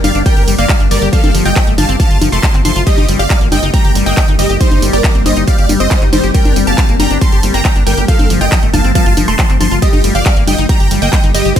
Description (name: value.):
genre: uplifting trance.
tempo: 138 BPM.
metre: 4/4.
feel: straight.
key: unclear.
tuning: A4 = 440 Hz.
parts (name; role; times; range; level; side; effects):
big supersaw lead; melody; 0.0-11.6 s; Eb4 to C6; -18 LUFS; equal; sidechain pumping, ping-pong delay.
wide unison pluck; second line; 0.0-11.6 s; C5 to C6; -22 LUFS; right 2 dB; sidechain pumping, tape echo.
liquid acid bass; arpeggios; 0.0-11.6 s; F3 to G4; -20 LUFS; left 4 dB; chorus, sidechain pumping, tape echo.
tight sequencer bass; bass; 0.0-11.5 s; F1 to A1; -16 LUFS; equal; sidechain pumping.
big-room dance drum kit; drums; 0.0-11.6 s; congas, handclaps, hi-hat, ride cymbal, tambourine; -18 LUFS; left 1 dB; studio reverb.
electronic kick drum; drums; 0.3-11.6 s; none; -12 LUFS; equal; studio reverb.
room: digital ambience.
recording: none.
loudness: -9 LUFS.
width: side -10 dB against mid.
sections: 0.0-11.6 A section.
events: none.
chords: 0.0 Gm; 1.1 F/G; 2.9 Eb/G; 4.6 Cm/G; 6.3 Gm; 8.1 F/G; 9.8 Eb/G.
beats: 0.26 0.69 | 1.13 1.56 2.00 2.43 | 2.87 3.30 3.74 4.17 | 4.61 5.04 5.47 5.91 | 6.34 6.78 7.21 7.65 | 8.08 8.52 8.95 9.39 | 9.82 10.26 10.69 11.13 | 11.56.